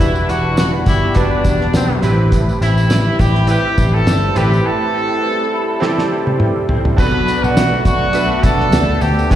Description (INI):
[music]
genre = indie pop, bedroom pop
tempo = 103 BPM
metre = 4/4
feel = swing 55% on 16ths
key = A dorian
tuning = A4 = 440 Hz
[part]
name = clear trumpet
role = melody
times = 0.0-9.4 s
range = C4 to B4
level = -19 LUFS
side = equal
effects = wide subtle chorus, slapback echo, analog delay
[part]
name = electric guitar through a small old amp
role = accompaniment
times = 0.0-9.4 s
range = A2 to G4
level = -22 LUFS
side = left 5 dB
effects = ensemble chorus, warbly pitch drift, slapback echo
[part]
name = warm analog keys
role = accompaniment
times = 0.0-9.4 s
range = C4 to B4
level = -21 LUFS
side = right 4 dB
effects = chorus, slapback echo
[part]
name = vintage muted picked electric bass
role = bass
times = 0.0-9.4 s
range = E1 to B2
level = -16 LUFS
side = equal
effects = none
[part]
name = cloth-damped thuddy drum kit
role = drums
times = 0.0-9.4 s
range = crash cymbal, hi-hat, kick drum, snare drum, toms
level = -16 LUFS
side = equal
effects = none
[part]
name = tambourine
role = percussion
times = 0.0-9.4 s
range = none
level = -35 LUFS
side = right 4 dB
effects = none
[part]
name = vibraphone with medium hard mallets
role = second line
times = 7.0-9.4 s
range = F#4 to F#5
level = -24 LUFS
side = right 5 dB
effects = wide subtle chorus, slapback echo, analog delay
[sound]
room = small room ambience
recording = live gig heard through the venue's PA, recital hall reverb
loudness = -12 LUFS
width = side -11 dB against mid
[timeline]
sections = 0.0-7.0 A section; 7.0-9.4 B section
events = break 4.7-7.0; drum fill 5.8-7.0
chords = 0.0 Em7; 2.0 Am7; 7.0 Bm7